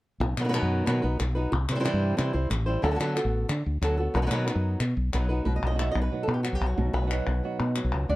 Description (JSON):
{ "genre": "flamenco", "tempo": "183 BPM", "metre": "4/4", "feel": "straight", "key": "B phrygian dominant", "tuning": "A4 = 440 Hz", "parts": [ { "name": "flamenco guitar", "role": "melody", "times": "0.2-8.2 s", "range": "B2 to E5", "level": "-29 LUFS", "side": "equal", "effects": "none" }, { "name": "woody fretless electric bass", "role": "bass", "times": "0.2-8.2 s", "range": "A1 to D3", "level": "-26 LUFS", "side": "equal", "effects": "none" }, { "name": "palmas hand claps", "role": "percussion", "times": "0.2-8.1 s", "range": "none", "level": "-35 LUFS", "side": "left 4 dB", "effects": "none" }, { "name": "flamenco guitar", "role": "stabs", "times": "5.5-8.2 s", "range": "B2 to F#4", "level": "-33 LUFS", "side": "right 4 dB", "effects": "none" } ], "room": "light reverb", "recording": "dark, warm production", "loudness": "-24 LUFS", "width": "side -18 dB against mid", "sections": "0.2-5.5 A section; 5.5-8.2 B section", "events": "none", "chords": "0.2 B; 1.5 C; 2.8 D6; 4.1 B", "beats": "| 0.21 0.53 0.86 1.19 | 1.52 1.85 2.17 2.50 | 2.83 3.16 3.49 3.82 | 4.14 4.47 4.80 5.13 | 5.46 5.79 6.12 6.45 | 6.78 7.11 7.44 7.77 | 8.10" }